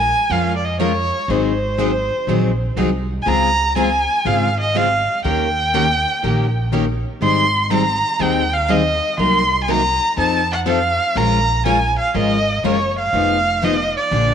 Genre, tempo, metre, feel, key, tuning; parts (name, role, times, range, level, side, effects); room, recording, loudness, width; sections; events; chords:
acoustic string swing (jazz manouche); 122 BPM; 4/4; swing 66% on 8ths; Bb minor; A4 = 437 Hz
warm violin; melody; 0.0-14.3 s; C5 to C6; -18 LUFS; right 1 dB
upright bass; bass; 0.0-14.3 s; F1 to F2; -22 LUFS; right 1 dB
picked plugged-in steel-string acoustic guitar; accompaniment; 0.3-14.3 s; C3 to Bb4; -22 LUFS; left 9 dB
picked steel-string acoustic guitar; accompaniment; 0.3-14.3 s; C3 to Bb4; -25 LUFS; right 9 dB
wet echo chamber reverb, RT60 2.1 s; 1960s-style stereo with parts hard left and right; -15 LUFS; side -8 dB against mid
0.0-14.3 A section
0.0 Bbm7; 1.3 Ab7; 3.3 Dbmaj7; 5.2 Eb7; 7.2 Abmaj9; 9.2 Cm7b5; 10.2 F7; 11.2 Bbm7; 13.1 Fm7b5